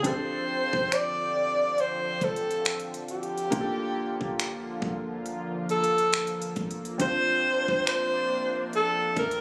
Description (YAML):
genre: contemporary R&B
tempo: 69 BPM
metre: 4/4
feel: swing 58% on 16ths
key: F major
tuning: A4 = 440 Hz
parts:
  - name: breathy alto saxophone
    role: melody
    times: 0.0-9.4 s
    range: G4 to D5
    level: -29 LUFS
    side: equal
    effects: digital delay
  - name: felt-muted upright piano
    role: accompaniment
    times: 0.0-9.4 s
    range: Bb3 to C5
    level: -37 LUFS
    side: equal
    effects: none
  - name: lush unison pad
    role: sustained chords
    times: 0.0-9.4 s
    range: C3 to F4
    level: -39 LUFS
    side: equal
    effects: chorus, phaser, sidechain pumping
  - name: clean 808-style bass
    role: bass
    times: 0.0-9.4 s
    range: F1 to F2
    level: -41 LUFS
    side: equal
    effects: none
  - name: trap drum kit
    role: drums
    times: 0.0-9.4 s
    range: finger snaps, hi-hat, kick drum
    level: -34 LUFS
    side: equal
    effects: none
room: light reverb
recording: recorded on a phone in the room, club reverb, compression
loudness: -28 LUFS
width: mono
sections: 0.0-9.4 A section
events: none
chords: 0.0 F6; 3.5 C13sus4; 7.0 Bbadd9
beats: | 0.04 0.91 1.78 2.65 | 3.52 4.39 5.26 6.13 | 7.00 7.87 8.74